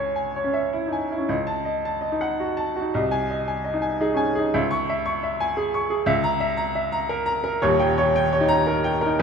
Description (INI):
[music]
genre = classical, romantic character piece for solo piano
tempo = 104-120 BPM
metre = 3/4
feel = rubato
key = C# minor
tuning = A4 = 440 Hz
[part]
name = bright upright piano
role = solo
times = 0.0-9.2 s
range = D#1 to C#6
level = -21 LUFS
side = equal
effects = none
[sound]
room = wet recital hall reverb, RT60 1.4 s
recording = recorded in a church or concert hall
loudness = -21 LUFS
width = side -6 dB against mid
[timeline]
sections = 0.0-9.2 A section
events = none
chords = 0.0 C#m; 1.3 D#m7b5/C#; 2.9 G#/B#; 4.5 C#m; 6.1 A#dim/C#; 7.6 D#7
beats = 0.15 0.72 | 1.27 1.83 2.38 | 2.92 3.46 3.99 | 4.53 5.06 5.57 | 6.08 6.59 7.10 | 7.62 8.16 8.69 | 9.21